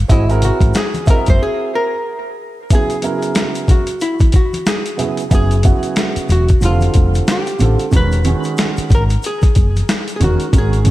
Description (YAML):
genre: hip hop, jazz-hop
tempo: 92 BPM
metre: 4/4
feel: swing 60% on 16ths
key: C# dorian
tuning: A4 = 440 Hz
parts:
  - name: woody fretless electric bass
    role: bass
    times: 0.0-1.4, 5.3-10.9 s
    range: E1 to A1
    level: -14 LUFS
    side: equal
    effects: none
  - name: hollow-body jazz guitar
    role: melody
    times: 0.1-10.9 s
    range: E4 to B#4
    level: -21 LUFS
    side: left 1 dB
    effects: analog delay
  - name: dark baby grand piano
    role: accompaniment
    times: 0.1-10.9 s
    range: C#3 to E5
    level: -20 LUFS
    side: right 4 dB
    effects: none
  - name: boom bap sampler-style drum kit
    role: drums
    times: 0.1-10.9 s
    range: hi-hat, kick drum, snare drum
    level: -14 LUFS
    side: equal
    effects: overdrive
  - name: tube shaker and congas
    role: percussion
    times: 0.1-10.9 s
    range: none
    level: -30 LUFS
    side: left 2 dB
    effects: none
room: light reverb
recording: none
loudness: -12 LUFS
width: side -16 dB against mid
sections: 0.0-2.7 A section; 2.7-10.9 B section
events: hollow-body jazz guitar solo 0.0-2.7; break 1.4-2.7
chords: 0.1 G#7b13; 2.7 C#m7; 5.3 F#sus2; 6.6 Fadd9; 7.9 Emaj9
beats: | 0.10 0.75 1.40 2.05 | 2.71 3.36 4.01 4.66 | 5.31 5.97 6.62 7.27 | 7.92 8.57 9.23 9.88 | 10.53